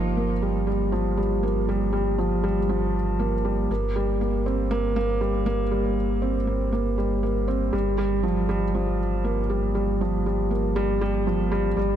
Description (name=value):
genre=piano and strings electronica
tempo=119 BPM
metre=4/4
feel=straight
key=G minor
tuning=A4 = 445 Hz
part: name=felt-muted upright piano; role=riff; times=0.0-12.0 s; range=F3 to C4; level=-24 LUFS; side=right 1 dB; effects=ping-pong delay
part: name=warm sub bass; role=bass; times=0.0-12.0 s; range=G1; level=-27 LUFS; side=equal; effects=none
room=light reverb, studio ambience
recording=dark, warm production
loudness=-22 LUFS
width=side -10 dB against mid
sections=0.0-12.0 A section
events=none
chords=0.0 Gm7; 3.7 Gmadd11; 7.7 Gm7